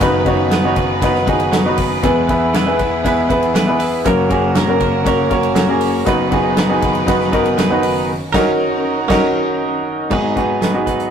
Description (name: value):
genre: piano-driven pop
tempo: 119 BPM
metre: 4/4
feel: straight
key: B major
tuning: A4 = 440 Hz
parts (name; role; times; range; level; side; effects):
- clear concert grand piano; accompaniment; 0.0-11.1 s; F#1 to C#5; -15 LUFS; left 1 dB; none
- warm studio string section; sustained chords; 0.0-10.1 s; F#2 to B4; -26 LUFS; equal; none
- direct-recorded clean electric guitar; riff; 0.0-11.1 s; G#2 to B4; -21 LUFS; right 4 dB; none
- natural country drum kit; drums; 0.0-11.1 s; crash cymbal, hi-hat, kick drum, ride cymbal, snare drum; -21 LUFS; equal; none
room: wet studio reverb, RT60 0.5 s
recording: rough rehearsal-room recording, tube saturation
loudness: -13 LUFS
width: side -8 dB against mid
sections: 0.0-10.1 A section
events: band accent 8.1-10.1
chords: 0.0 B/F#; 2.0 E; 4.1 F#; 6.1 B/F#; 8.1 F#6; 10.1 G#m7